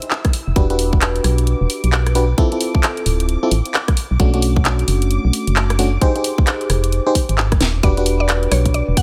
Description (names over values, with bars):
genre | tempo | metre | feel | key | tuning
UK garage, two-step garage | 132 BPM | 4/4 | swing 62% on 16ths | unclear | A4 = 437 Hz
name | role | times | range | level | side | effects
soft string machine | sustained chords | 0.0-9.0 s | E4 to E6 | -36 LUFS | equal | phaser, ensemble chorus, sidechain pumping
garage drum kit | drums | 0.0-9.0 s | handclaps, hi-hat, rim click, snare drum | -23 LUFS | equal | studio reverb
electronic kick drum | drums | 0.2-9.0 s | none | -18 LUFS | equal | studio reverb
organ-like FM bass | bass | 0.5-8.9 s | D1 to B1 | -19 LUFS | equal | none
FM electric piano | stabs | 0.6-9.0 s | A3 to C5 | -23 LUFS | equal | chorus, low-pass filter, tape echo
mallet-like synth pluck | melody | 7.8-9.0 s | C#5 to F#5 | -26 LUFS | equal | chorus, tape echo
room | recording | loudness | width
digital ambience | none | -17 LUFS | mono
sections
0.0-7.8 A section; 7.8-9.0 B section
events
filter sweep on FM electric piano 0.0-7.8; drum fill 7.6; drop 7.8-9.0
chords
0.0 N.C.; 0.6 Em9; 2.4 Dm9; 4.0 Bm9; 6.0 Fm9; 7.8 Em9